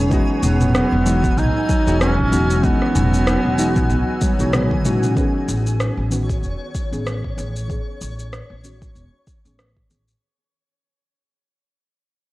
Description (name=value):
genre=organic downtempo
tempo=95 BPM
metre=4/4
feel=swing 57% on 16ths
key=unclear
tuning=A4 = 444 Hz
part: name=deep mellow chord stab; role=accompaniment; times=0.0-10.2 s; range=D#3 to G#4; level=-25 LUFS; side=left 1 dB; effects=analog chorus, cassette tape, sidechain pumping, tape echo, shimmer reverb
part: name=granular cloud pad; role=sustained chords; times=0.0-5.1 s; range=D#4 to E6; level=-29 LUFS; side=equal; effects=built-in reverb, vintage 12-bit sampler grit, sidechain pumping, shimmer reverb
part: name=concert harp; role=arpeggios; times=0.0-7.7 s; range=F#3 to F#4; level=-24 LUFS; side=left 1 dB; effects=tape echo, shimmer reverb
part: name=upright bass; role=bass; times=0.0-10.1 s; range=E1 to B1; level=-21 LUFS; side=equal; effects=sidechain pumping
part: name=twinkling granular texture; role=texture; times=0.0-10.2 s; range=C#5 to G#5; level=-35 LUFS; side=right 2 dB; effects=built-in reverb, shimmer reverb
part: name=afro-pop drum kit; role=drums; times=0.1-10.2 s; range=rim click, shaker, toms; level=-24 LUFS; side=equal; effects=overdrive
part: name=electronic kick drum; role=drums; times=0.1-9.9 s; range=none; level=-22 LUFS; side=equal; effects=overdrive
part: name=warm duduk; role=melody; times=0.4-4.5 s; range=B3 to D#4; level=-23 LUFS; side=right 1 dB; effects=digital delay, shimmer reverb
room=light reverb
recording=worn, warbling old tape, cassette tape, warbly pitch drift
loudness=-16 LUFS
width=side -18 dB against mid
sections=0.0-5.2 A section; 5.2-10.2 B section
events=drum fill 4.2-5.2; fade-out 5.2-10.2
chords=0.1 Emaj9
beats=| 0.11 0.74 1.37 2.00 | 2.64 3.27 3.90 4.53 | 5.16 5.79 6.43 7.06 | 7.69 8.32 8.95 9.58